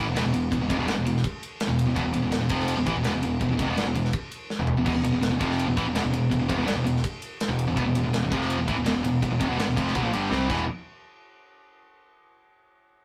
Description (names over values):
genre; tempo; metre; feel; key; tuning
heavy metal; 165 BPM; 4/4; straight; E minor; A4 = 440 Hz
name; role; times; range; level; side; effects
high-gain distorted guitar; riff; 0.0-10.6 s; E2 to C4; -35 LUFS; equal; none
high-gain distorted guitar; riff; 0.0-10.6 s; E2 to C4; -28 LUFS; equal; distortion
overdriven picked electric bass; bass; 0.0-10.7 s; E1 to C2; -32 LUFS; equal; none
tight metal drum kit; drums; 0.2-10.6 s; crash cymbal, kick drum, ride cymbal, snare drum, toms; -34 LUFS; equal; none
crunchy overdriven guitar; riff; 4.9-10.6 s; E2 to G4; -35 LUFS; equal; none
room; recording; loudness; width
light reverb; rough rehearsal-room recording, tube saturation; -25 LUFS; mono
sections
0.0-10.7 A section; 10.7-12.1 B section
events
drum fill 4.5-4.9, 10.3-10.7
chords
0.0 Em; 10.7 N.C.